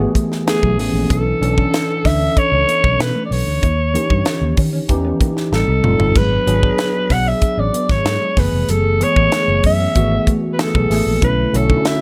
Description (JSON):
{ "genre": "polished 1980s jazz-funk pop", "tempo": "95 BPM", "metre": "4/4", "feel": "straight", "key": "F# minor", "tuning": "A4 = 440 Hz", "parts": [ { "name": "growling alto saxophone", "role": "melody", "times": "0.0-12.0 s", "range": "F#4 to F#5", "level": "-21 LUFS", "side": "equal", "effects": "none" }, { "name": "mellow tine electric piano", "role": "accompaniment", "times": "0.0-12.0 s", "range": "D3 to A4", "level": "-23 LUFS", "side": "equal", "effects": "ensemble chorus" }, { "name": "mellow electric guitar", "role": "riff", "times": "0.0-11.9 s", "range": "F#3 to D#4", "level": "-30 LUFS", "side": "equal", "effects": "none" }, { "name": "vintage muted fingered electric bass", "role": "bass", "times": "0.0-11.8 s", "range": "E#1 to D#3", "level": "-21 LUFS", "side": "equal", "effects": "none" }, { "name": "crisp fusion drum kit", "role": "drums", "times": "0.2-12.0 s", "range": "hi-hat, kick drum, snare drum, splash cymbal, toms", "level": "-21 LUFS", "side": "equal", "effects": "none" } ], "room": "little or no reverb", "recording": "none", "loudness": "-16 LUFS", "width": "mono", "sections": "0.0-12.0 A section", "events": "drum fill 5.5-6.2", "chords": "0.0 F#m11; 1.1 Bm11; 3.6 D#7b9; 5.5 Am7b5; 6.2 G#m7b5; 8.4 F#m11; 11.2 Bm11", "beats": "0.47 | 1.10 1.73 2.37 3.00 | 3.63 4.26 4.90 5.53 | 6.16 6.79 7.42 8.06 | 8.69 9.32 9.95 10.59 | 11.22 11.85" }